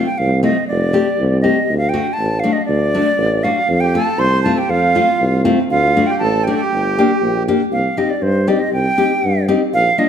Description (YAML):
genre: klezmer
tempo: 119 BPM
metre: 2/4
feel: straight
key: unclear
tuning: A4 = 438 Hz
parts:
  - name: concert flute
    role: melody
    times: 0.0-10.1 s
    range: C5 to C6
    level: -18 LUFS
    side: right 2 dB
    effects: none
  - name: nylon-string guitar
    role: accompaniment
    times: 0.0-10.1 s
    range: A3 to G4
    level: -18 LUFS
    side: left 3 dB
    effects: none
  - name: warm tuba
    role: bass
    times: 0.2-9.9 s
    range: F1 to G2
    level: -19 LUFS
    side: equal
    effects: none
  - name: accordion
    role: second line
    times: 3.8-7.4 s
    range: F4 to C5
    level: -22 LUFS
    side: right 4 dB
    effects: none
room: moderate recital hall reverb, RT60 1.5 s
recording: none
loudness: -13 LUFS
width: side -8 dB against mid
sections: 0.0-7.7 A section; 7.7-10.1 B section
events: none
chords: 0.0 F; 1.7 D; 3.7 F; 5.7 D; 6.7 Gm; 7.7 Cm